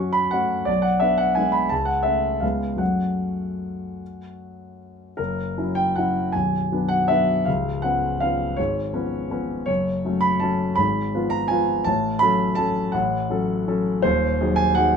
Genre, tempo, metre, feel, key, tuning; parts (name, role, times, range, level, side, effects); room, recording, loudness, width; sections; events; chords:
classical, piano waltz; 144-184 BPM; 3/4; rubato; F# minor; A4 = 440 Hz
warm concert grand piano; solo; 0.0-15.0 s; B0 to C#6; -20 LUFS; equal
moderate small room ambience, RT60 0.5 s; minimal, uncompressed stereo recording; -20 LUFS; side -6 dB against mid
0.0-5.2 A section; 5.2-15.0 B section
0.0 F#m; 0.7 G#dim/B; 1.7 A6/C#; 2.4 C#7; 2.8 F#m; 5.2 F#7; 6.3 Bm; 7.5 C#7; 9.7 F#m; 10.8 Fdim/Ab; 11.9 F#m/A; 14.0 G#7/D#